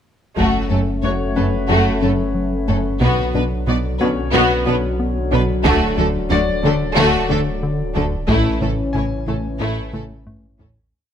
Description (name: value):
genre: cinematic, hybrid orchestral and electronic film score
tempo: 91 BPM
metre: 4/4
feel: straight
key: F# minor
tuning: A4 = 440 Hz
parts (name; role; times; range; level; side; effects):
- warm symphonic violin section; melody; 0.4-10.7 s; E4 to D5; -24 LUFS; left 2 dB; none
- warm symphonic violin section; second line; 0.4-10.7 s; A3 to F#4; -24 LUFS; left 1 dB; none
- rich symphonic viola section; accompaniment; 0.4-10.7 s; A3 to B3; -24 LUFS; right 1 dB; none
- dark French horn section; sustained chords; 0.4-10.6 s; D3 to C#4; -25 LUFS; left 4 dB; none
- soft round pluck; arpeggios; 0.4-10.8 s; D3 to F#4; -28 LUFS; left 7 dB; none
- rubbery square bass; riff; 0.4-10.8 s; D2 to B3; -25 LUFS; left 2 dB; none
- pure sine sub bass; bass; 0.4-10.9 s; D1 to B1; -26 LUFS; right 1 dB; none
- rich studio cello section; bass; 0.4-10.7 s; F#2 to D3; -24 LUFS; right 3 dB; none
- rich symphonic double bass section; bass; 0.4-10.7 s; F#1 to D2; -26 LUFS; right 4 dB; none
- solo taiko drums; drums; 0.4-10.9 s; none; -26 LUFS; right 1 dB; none
- bright grand piano; texture; 1.0-11.0 s; C#4 to G#5; -29 LUFS; left 4 dB; tape echo
room: moderate recital hall reverb, RT60 1.4 s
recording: close, detailed microphones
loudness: -16 LUFS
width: side -8 dB against mid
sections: 0.4-10.9 theme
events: fade-out 8.3-10.9; drum fill 9.9-10.9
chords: 0.4 F#m; 3.0 Bm; 5.7 D; 8.3 A